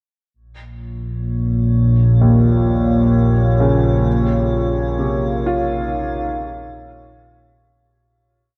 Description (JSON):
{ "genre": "dark ambient drone", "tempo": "64 BPM", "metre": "4/4", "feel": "straight", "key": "Bb minor", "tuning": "A4 = 441 Hz", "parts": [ { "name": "dark analog pad", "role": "sustained chords", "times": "0.3-7.8 s", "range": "Bb3 to F5", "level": "-28 LUFS", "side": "equal", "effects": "chorus" }, { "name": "analog drone", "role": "drone", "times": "0.9-7.9 s", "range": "Bb1 to Bb2", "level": "-18 LUFS", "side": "equal", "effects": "chorus" }, { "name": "metallic inharmonic drone", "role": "texture", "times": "1.6-7.8 s", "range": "Db5", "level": "-35 LUFS", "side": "equal", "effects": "chorus, built-in reverb" }, { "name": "clear baby grand piano", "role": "arpeggios", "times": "2.2-8.6 s", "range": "Eb2 to F4", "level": "-24 LUFS", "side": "equal", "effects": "diffuse ambient delay" } ], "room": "wet cathedral reverb, RT60 5.0 s", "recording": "dark, warm production", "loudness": "-17 LUFS", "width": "mono", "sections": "0.3-7.8 A section", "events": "fade-in on analog synth pad 0.3-7.8; fade-in on synth drone 0.3-7.8; fade-out 4.1-7.8", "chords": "0.3 Bbm; 4.1 Eb5/Bb" }